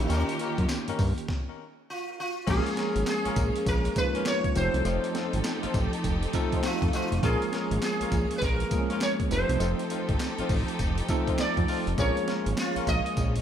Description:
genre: R&B, new jack swing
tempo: 101 BPM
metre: 4/4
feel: swing 63% on 16ths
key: unclear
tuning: A4 = 440 Hz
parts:
  - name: sitar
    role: melody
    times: 0.0-13.4 s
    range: C#4 to Eb5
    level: -31 LUFS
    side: right 1 dB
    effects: ping-pong delay
  - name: barky tine electric piano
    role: accompaniment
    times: 0.0-13.4 s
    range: D#3 to A4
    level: -31 LUFS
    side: right 1 dB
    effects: medium stereo tremolo
  - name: rich symphonic string section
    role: sustained chords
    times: 0.0-13.4 s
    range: D#3 to A4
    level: -36 LUFS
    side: equal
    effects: none
  - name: fat analog bass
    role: bass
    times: 0.0-13.4 s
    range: F1 to G2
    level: -28 LUFS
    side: equal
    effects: none
  - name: mellow horn section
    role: stabs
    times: 0.1-12.9 s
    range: Bb3 to C5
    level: -36 LUFS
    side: left 6 dB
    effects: ping-pong delay
  - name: breakbeat sampler-style drum kit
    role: drums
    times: 0.1-13.4 s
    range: crash cymbal, handclaps, hi-hat, kick drum, snare drum, tambourine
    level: -31 LUFS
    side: equal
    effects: none
room: moderate plate reverb, RT60 1.5 s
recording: dreamy mix soaked in reverb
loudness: -25 LUFS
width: side -9 dB against mid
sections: 0.0-2.5 A section; 2.5-13.4 A section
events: stop 1.3-2.5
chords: 0.0 D#7; 1.3 N.C.; 2.5 Bbm7; 4.6 F7; 7.2 Bbm7; 9.3 F7; 12.0 Bbm7

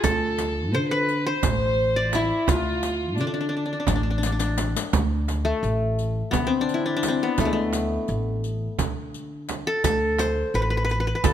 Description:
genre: Turkish makam ensemble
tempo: 171 BPM (eighths)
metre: 7/8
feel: straight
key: D makam nikriz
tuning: A4 = 440 Hz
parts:
  - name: qanun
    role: melody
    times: 0.0-11.3 s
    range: G#3 to D5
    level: -25 LUFS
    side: left 2 dB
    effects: none
  - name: warm studio violin section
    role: second line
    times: 0.0-4.6 s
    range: D4 to C5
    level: -29 LUFS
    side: left 1 dB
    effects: none
  - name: upright bass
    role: bass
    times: 0.0-11.3 s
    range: A1 to D3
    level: -26 LUFS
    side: equal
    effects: none
  - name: frame drum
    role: percussion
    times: 0.0-11.3 s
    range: none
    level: -27 LUFS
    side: right 6 dB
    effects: none
  - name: riq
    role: percussion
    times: 0.0-11.3 s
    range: none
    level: -33 LUFS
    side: left 8 dB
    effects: none
room: light reverb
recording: close, detailed microphones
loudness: -22 LUFS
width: side -10 dB against mid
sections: 0.0-4.9 A section; 4.9-11.3 B section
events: drum fill 4.2-4.9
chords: none

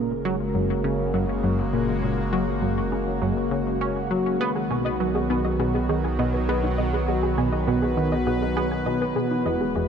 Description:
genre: ambient, sequencer-driven space music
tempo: 101 BPM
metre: 4/4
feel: straight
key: unclear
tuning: A4 = 440 Hz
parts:
  - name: sweeping resonant pad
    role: sustained chords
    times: 0.0-9.9 s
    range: C#3 to B4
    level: -25 LUFS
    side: equal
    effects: chorus
  - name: tight sequenced synth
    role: riff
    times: 0.0-9.9 s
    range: E2 to C#4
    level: -26 LUFS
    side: left 1 dB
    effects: chorus, cassette tape, ping-pong delay
  - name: warm sub bass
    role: bass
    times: 0.0-9.9 s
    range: E1 to B1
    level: -31 LUFS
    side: equal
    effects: none
  - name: soft round pluck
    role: arpeggios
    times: 4.4-9.9 s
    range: D#4 to G#5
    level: -30 LUFS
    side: right 2 dB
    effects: chorus, auto-pan, ping-pong delay
room: wet huge ambient reverb, RT60 7.0 s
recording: none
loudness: -22 LUFS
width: side -7 dB against mid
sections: 0.0-9.9 A section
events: none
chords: 0.0 F#add9; 4.4 B; 9.2 Eadd9

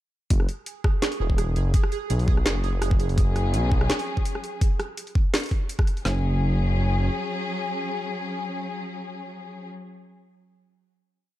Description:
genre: half-time drum and bass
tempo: 167 BPM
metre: 4/4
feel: swing 53% on 16ths, half-time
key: unclear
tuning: A4 = 436 Hz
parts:
  - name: dark detuned saw bass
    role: bass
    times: 0.3-3.9, 6.1-7.1 s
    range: E1 to B1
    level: -23 LUFS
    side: equal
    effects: none
  - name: drum and bass drum kit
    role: drums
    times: 0.3-6.1 s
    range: kick drum, snare drum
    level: -22 LUFS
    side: equal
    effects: overdrive, studio ambience
  - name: drum and bass drum kit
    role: drums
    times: 0.3-6.0 s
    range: hi-hat, rim click, snare drum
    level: -29 LUFS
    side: equal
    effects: overdrive, studio ambience
  - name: pulsing gated texture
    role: texture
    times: 0.3-4.6 s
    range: G#4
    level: -35 LUFS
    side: right 8 dB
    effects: chorus, built-in reverb
  - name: rich studio string section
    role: sustained chords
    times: 3.2-9.7 s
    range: F#3 to G#4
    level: -30 LUFS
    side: left 3 dB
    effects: vintage 12-bit sampler grit, sidechain pumping
room: digital ambience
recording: dark, warm production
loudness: -22 LUFS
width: side -14 dB against mid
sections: 0.3-6.1 drop; 6.1-8.9 final chord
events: drop 0.3-6.1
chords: 0.3 F#sus2

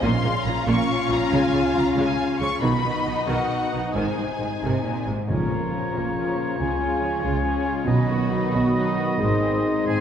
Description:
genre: cinematic, heroic adventure film score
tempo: 92 BPM (dotted quarters)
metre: 6/8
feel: straight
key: Bb minor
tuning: A4 = 440 Hz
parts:
  - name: rich symphonic violin section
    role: melody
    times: 0.0-10.0 s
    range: F4 to Db6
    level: -30 LUFS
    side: left 3 dB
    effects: none
  - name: warm symphonic violin section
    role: second line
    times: 0.0-10.0 s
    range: Bb3 to F5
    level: -31 LUFS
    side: left 2 dB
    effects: none
  - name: warm symphonic viola section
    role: accompaniment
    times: 0.0-10.0 s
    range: C3 to D#4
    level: -30 LUFS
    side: right 1 dB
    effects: none
  - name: mellow French horn section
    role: sustained chords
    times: 0.0-10.0 s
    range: B3 to F#4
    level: -27 LUFS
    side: left 3 dB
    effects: none
  - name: rich symphonic cello section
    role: bass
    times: 0.0-10.0 s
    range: Ab2 to Db3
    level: -28 LUFS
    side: right 1 dB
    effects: none
  - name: warm symphonic double bass section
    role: bass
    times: 0.0-10.0 s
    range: Ab1 to Db2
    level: -28 LUFS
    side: right 3 dB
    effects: none
  - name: clear oboe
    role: second line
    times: 5.3-10.0 s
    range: Ab4 to D#5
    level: -30 LUFS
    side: equal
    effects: none
  - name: concert flute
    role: second line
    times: 5.3-10.0 s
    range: Ab5 to C6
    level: -31 LUFS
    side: equal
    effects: none
  - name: warm clarinet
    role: second line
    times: 5.3-10.0 s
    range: F4 to Ab4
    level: -32 LUFS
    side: left 1 dB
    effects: none
  - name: mellow trombone section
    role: sustained chords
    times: 5.3-10.0 s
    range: Db3 to Ab3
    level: -30 LUFS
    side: right 4 dB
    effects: none
  - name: timpani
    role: percussion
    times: 5.3-5.9 s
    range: Bb2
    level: -31 LUFS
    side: left 2 dB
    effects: none
room: wet church reverb, RT60 2.4 s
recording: recorded in a church or concert hall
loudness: -20 LUFS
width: side -8 dB against mid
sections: 0.0-5.3 A section; 5.3-10.0 B section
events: none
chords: 0.0 Bbm; 1.3 Db; 2.6 B; 4.0 Ab; 5.3 Bbm; 6.6 Db; 7.9 B; 9.2 Ab

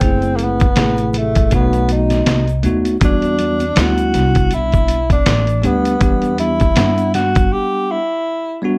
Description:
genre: hip hop, jazz-hop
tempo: 80 BPM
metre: 4/4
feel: swing 57% on 16ths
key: E minor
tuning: A4 = 440 Hz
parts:
  - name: mellow tenor saxophone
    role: melody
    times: 0.0-8.7 s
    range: A3 to G4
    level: -22 LUFS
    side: equal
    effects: plate reverb
  - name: bell-like tine electric piano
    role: accompaniment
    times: 0.0-8.8 s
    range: C3 to F#5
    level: -21 LUFS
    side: equal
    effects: none
  - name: upright bass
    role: bass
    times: 0.0-7.5 s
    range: F#1 to G2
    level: -22 LUFS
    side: equal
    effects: none
  - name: lo-fi sampler-style drum kit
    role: drums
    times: 0.0-7.5 s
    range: hi-hat, kick drum, snare drum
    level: -18 LUFS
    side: equal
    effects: none
  - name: egg shaker and congas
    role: percussion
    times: 0.0-7.5 s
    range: none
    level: -34 LUFS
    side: equal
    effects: none
room: light reverb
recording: dark, warm production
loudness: -15 LUFS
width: mono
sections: 0.0-8.8 A section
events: break 7.5-8.8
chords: 0.0 F#m7b5; 1.5 B7; 3.0 Em9

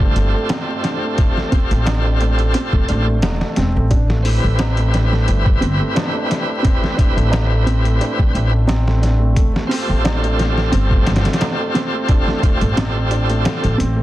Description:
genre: trip hop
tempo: 88 BPM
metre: 4/4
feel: swing 54% on 16ths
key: unclear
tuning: A4 = 442 Hz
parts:
  - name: bright tonewheel organ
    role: accompaniment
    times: 0.0-13.8 s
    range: C4 to B4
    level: -23 LUFS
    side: equal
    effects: overdrive, fast rotary speaker, tremolo, tape echo
  - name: felt-muted upright piano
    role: arpeggios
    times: 0.0-14.0 s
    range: A3 to A4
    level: -23 LUFS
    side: right 2 dB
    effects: tape echo
  - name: upright bass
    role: bass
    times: 0.0-14.0 s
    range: E1 to A1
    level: -17 LUFS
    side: equal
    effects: none
  - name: trip hop sampler-style drum kit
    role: drums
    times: 0.0-14.0 s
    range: hi-hat, kick drum, snare drum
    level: -19 LUFS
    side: equal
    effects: studio reverb
  - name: tabla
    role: percussion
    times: 0.5-12.9 s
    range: none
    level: -31 LUFS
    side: right 2 dB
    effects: none
room: little or no reverb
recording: dense, heavily limited modern master, vinyl crackle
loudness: -14 LUFS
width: side -15 dB against mid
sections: 0.0-14.0 A section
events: none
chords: 0.0 Fadd9; 3.9 Am7; 9.4 Fadd9

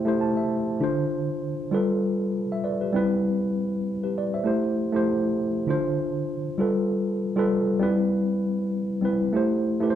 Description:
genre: soul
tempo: 99 BPM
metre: 4/4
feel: swing 54% on 16ths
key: D dorian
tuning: A4 = 441 Hz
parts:
  - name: mellow tine electric piano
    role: solo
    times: 0.0-10.0 s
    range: D3 to A5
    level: -22 LUFS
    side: equal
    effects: medium stereo tremolo
room: moderate studio reverb, RT60 0.9 s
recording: band playing live in one room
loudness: -22 LUFS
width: side -10 dB against mid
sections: 0.0-10.0 A section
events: tine electric piano fill 0.0-0.8, 9.6-10.0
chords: 0.0 Am7; 0.8 Dm7; 1.7 G9; 2.9 Cmaj7/G; 4.5 Am7; 5.7 Dm7; 6.6 G9; 7.8 Cmaj7/G; 9.3 Am7

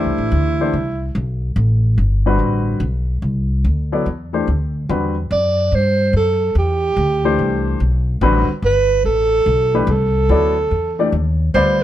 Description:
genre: modal jazz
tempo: 144 BPM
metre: 4/4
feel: swing 66% on 8ths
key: A dorian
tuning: A4 = 444 Hz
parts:
  - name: breathy alto saxophone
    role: melody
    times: 0.0-1.2, 5.3-11.8 s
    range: E4 to D5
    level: -17 LUFS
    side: right 3 dB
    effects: none
  - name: warm baby grand piano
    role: accompaniment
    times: 0.0-11.8 s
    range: D3 to D5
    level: -19 LUFS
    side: left 4 dB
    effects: none
  - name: upright bass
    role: bass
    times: 0.0-11.8 s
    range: G1 to G2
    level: -18 LUFS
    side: equal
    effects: none
room: light reverb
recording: none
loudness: -15 LUFS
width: side -12 dB against mid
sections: 0.0-11.5 A section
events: none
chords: 0.0 Am9

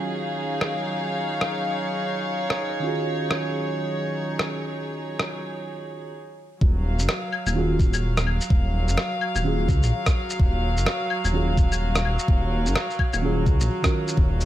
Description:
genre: future garage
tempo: 127 BPM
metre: 4/4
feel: swing 60% on 16ths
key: Eb minor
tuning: A4 = 440 Hz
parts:
  - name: muted felt-like synth keys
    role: accompaniment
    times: 0.0-14.2 s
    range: Eb3 to Bb4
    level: -30 LUFS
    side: right 2 dB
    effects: chorus, sidechain pumping, tape echo
  - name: rich chamber string section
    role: sustained chords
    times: 0.0-14.4 s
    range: Gb3 to F5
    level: -28 LUFS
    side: equal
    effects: sidechain pumping
  - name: electronic rim click, shaker, claves and cabasa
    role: drums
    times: 0.6-14.4 s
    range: none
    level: -27 LUFS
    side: left 1 dB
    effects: low-pass filter on perc, studio reverb, low-pass filter on snare
  - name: dark detuned saw bass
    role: bass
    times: 6.6-14.4 s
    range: Eb1 to Db2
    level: -23 LUFS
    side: equal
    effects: tube saturation, sidechain pumping
  - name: electronic kick drum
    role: drums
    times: 6.6-14.3 s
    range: none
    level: -20 LUFS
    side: equal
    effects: studio reverb
room: light reverb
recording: none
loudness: -21 LUFS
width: side -13 dB against mid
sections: 0.0-6.6 A section; 6.6-14.4 B section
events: none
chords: 0.0 Ebm11

